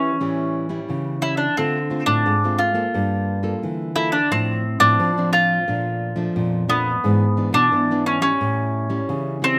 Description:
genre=samba and choro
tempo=88 BPM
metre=4/4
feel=straight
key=D minor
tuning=A4 = 440 Hz
part: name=mandolin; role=melody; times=0.0-9.6 s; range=B3 to F4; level=-22 LUFS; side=equal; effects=slapback echo
part: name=nylon-string guitar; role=accompaniment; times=0.0-9.6 s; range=F2 to A4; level=-29 LUFS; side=equal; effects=none
part: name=nylon-string guitar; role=bass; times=0.0-9.6 s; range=G2 to F3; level=-26 LUFS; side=equal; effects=none
room=little or no reverb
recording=recorded outdoors, with no room sound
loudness=-20 LUFS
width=mono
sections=0.0-9.6 A section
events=none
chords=0.0 A7; 1.6 Dm7; 2.9 Gm9; 4.3 Dm7/A; 5.7 Bbmaj7; 7.0 E7/G#; 8.4 A7

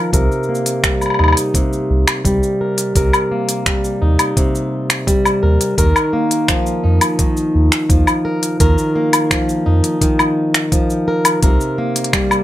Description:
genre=folktronica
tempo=85 BPM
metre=4/4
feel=straight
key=unclear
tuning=A4 = 440 Hz
part: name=fingerpicked plugged-in swing-style acoustic guitar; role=arpeggios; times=0.0-12.4 s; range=C3 to Bb4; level=-16 LUFS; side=equal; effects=low-pass filter, tape echo
part: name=warm sub bass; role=bass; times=0.1-11.6 s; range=C2 to F2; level=-14 LUFS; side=equal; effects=none
part: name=electronic kick drum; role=drums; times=0.1-12.3 s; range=none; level=-18 LUFS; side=equal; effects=none
part: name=organic electronic drum kit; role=drums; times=0.1-12.4 s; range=finger snaps, hi-hat, shaker, woodblock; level=-17 LUFS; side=left 1 dB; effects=none
room=moderate studio reverb, RT60 0.6 s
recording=none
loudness=-13 LUFS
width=side -14 dB against mid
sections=0.0-12.4 A section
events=none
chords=0.1 Cm7; 5.8 Ebsus2; 11.4 Cm7

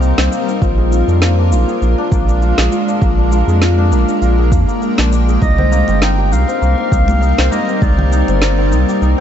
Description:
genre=organic downtempo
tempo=100 BPM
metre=4/4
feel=swing 55% on 16ths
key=C minor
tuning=A4 = 438 Hz
part: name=granular cloud pad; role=sustained chords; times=0.0-9.2 s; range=G3 to G5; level=-20 LUFS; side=equal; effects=built-in reverb, sidechain pumping
part: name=santur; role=arpeggios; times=0.0-9.2 s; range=Bb3 to Ab4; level=-18 LUFS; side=left 4 dB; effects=digital delay
part: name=warm sub bass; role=bass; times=0.0-9.2 s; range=G1 to F2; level=-13 LUFS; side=equal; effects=none
part: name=electronic cabasa and snare drum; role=drums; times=0.0-9.2 s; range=none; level=-21 LUFS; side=equal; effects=studio reverb
part: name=electronic kick drum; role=drums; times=0.6-7.9 s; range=none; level=-15 LUFS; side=equal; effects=overdrive, studio reverb
part: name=warm clarinet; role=melody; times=5.4-9.2 s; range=D5 to G5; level=-20 LUFS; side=equal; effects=ping-pong delay
part: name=congas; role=percussion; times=5.4-8.4 s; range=none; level=-25 LUFS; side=left 2 dB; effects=none
room=small room ambience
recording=dark, warm production, nothing above 7.9 kHz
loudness=-11 LUFS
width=side -9 dB against mid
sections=0.0-9.2 A section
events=none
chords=0.0 Cm7; 0.6 Bb7; 5.4 Cm7

